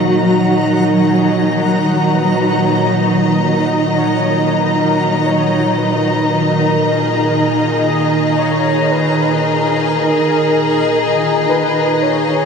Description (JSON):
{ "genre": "ambient", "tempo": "77 BPM", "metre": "4/4", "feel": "straight", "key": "Eb minor", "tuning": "A4 = 439 Hz", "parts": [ { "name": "warm velvety synth lead", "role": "melody", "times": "0.0-12.5 s", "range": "Bb4 to Ab5", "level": "-21 LUFS", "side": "equal", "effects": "chorus, tape echo" }, { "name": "rich studio string section", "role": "sustained chords", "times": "0.0-12.5 s", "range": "Eb3 to Bb5", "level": "-14 LUFS", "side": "equal", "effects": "none" }, { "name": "bowed-like drone", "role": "drone", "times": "0.0-12.5 s", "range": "Bb2 to Eb3", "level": "-22 LUFS", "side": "equal", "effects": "built-in reverb" }, { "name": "backwards swelling texture", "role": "texture", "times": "0.0-12.5 s", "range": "F4 to Bb5", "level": "-24 LUFS", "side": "equal", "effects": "built-in reverb" } ], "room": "wet cathedral reverb, RT60 6.4 s", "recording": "in a vast, echoing space, nothing above 10.7 kHz", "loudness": "-12 LUFS", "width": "side -6 dB against mid", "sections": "0.0-12.5 A section", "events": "fade-in on soft synth lead 0.0-12.5; fade-out on synth drone 0.0-12.5; fade-out on synth texture 0.0-12.5", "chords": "0.0 Ebmadd9", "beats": "| 0.09 0.87 1.65 2.43 | 3.21 3.99 4.77 5.55 | 6.33 7.11 7.88 8.66 | 9.44 10.22 11.00 11.78" }